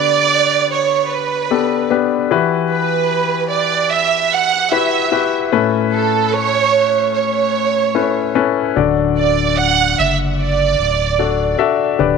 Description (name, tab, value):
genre	pop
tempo	75 BPM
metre	4/4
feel	straight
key	D major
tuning	A4 = 440 Hz
part	warm studio violin section	melody	0.0-11.6 s	A4 to F#5	-16 LUFS	right 9 dB	slapback echo
part	warm grand piano	accompaniment	0.0-12.2 s	A2 to E5	-17 LUFS	left 10 dB	none
part	sub bass with octave	bass	8.8-12.2 s	D1 to F#1	-21 LUFS	equal	none
room	moderate plate reverb, RT60 3.2 s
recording	1960s-style stereo with parts hard left and right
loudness	-13 LUFS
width	side -5 dB against mid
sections	0.0-12.2 A section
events	none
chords	0.0 G/D; 2.3 Emadd9; 5.5 Aadd9; 8.8 D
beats	0.70 1.50 | 2.30 3.10 3.90 4.71 | 5.52 6.33 7.13 7.95 | 8.76 9.57 10.38 11.19 | 11.99